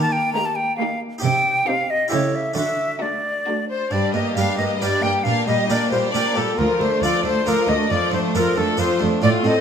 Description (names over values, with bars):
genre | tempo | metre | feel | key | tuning
classical, baroque-style concerto movement with solo episodes | 135 BPM | 3/4 | straight | G minor | A4 = 440 Hz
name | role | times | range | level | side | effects
bright silver concert flute | melody | 0.0-9.6 s | A4 to Bb5 | -22 LUFS | left 1 dB | none
harpsichord | accompaniment | 0.0-9.6 s | D2 to C5 | -27 LUFS | right 2 dB | none
clear studio cello section | bass | 0.0-9.5 s | D2 to Eb3 | -24 LUFS | right 4 dB | none
clear chamber violin section | second line | 0.3-9.6 s | D4 to G5 | -26 LUFS | left 3 dB | none
rich chamber violin section | melody | 0.4-9.6 s | D4 to A4 | -28 LUFS | left 4 dB | none
rich symphonic viola section | accompaniment | 0.4-9.6 s | F3 to C4 | -25 LUFS | right 1 dB | none
room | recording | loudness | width
wet recital hall reverb, RT60 1.4 s | none | -18 LUFS | side -7 dB against mid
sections
0.0-3.9 A section; 3.9-9.6 A section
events
none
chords
0.0 Eb; 1.2 Cm; 2.1 A7/C#; 2.6 D; 3.9 Gm; 5.3 Gm/Bb; 6.6 Dm; 7.9 Dm/F